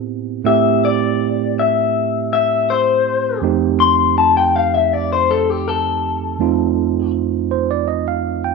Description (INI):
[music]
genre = blues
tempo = 81 BPM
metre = 4/4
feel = straight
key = unclear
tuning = A4 = 439 Hz
[part]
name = electric guitar through a small old amp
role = melody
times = 0.0-7.1 s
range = G4 to C6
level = -16 LUFS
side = left 9 dB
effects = none
[part]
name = tine electric piano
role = accompaniment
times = 0.0-8.5 s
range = F2 to G5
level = -18 LUFS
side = right 11 dB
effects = none
[sound]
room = moderate spring reverb, RT60 1.9 s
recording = 1960s-style stereo with parts hard left and right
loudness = -14 LUFS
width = side -3 dB against mid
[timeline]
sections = 0.0-8.5 A section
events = tine electric piano fill 7.1-8.5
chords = 0.0 Am7; 3.4 F7